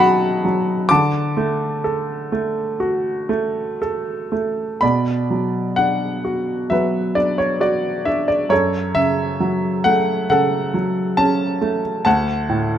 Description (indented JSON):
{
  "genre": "classical, lyrical solo piano",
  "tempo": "57-68 BPM",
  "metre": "4/4",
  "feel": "rubato",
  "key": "D major, B minor from 4.8 s",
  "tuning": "A4 = 441 Hz",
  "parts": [
    { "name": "clear baby grand piano", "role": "solo", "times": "0.0-12.8 s", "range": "D2 to D6", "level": "-17 LUFS", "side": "equal", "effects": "none" }
  ],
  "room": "moderate scoring stage reverb, RT60 1.9 s",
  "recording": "close, detailed microphones",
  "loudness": "-17 LUFS",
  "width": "side -10 dB against mid",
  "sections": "0.0-4.8 A section; 4.8-12.8 B section",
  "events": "none",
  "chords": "0.0 B; 0.9 D; 4.8 Bm; 8.5 F#m; 12.1 D"
}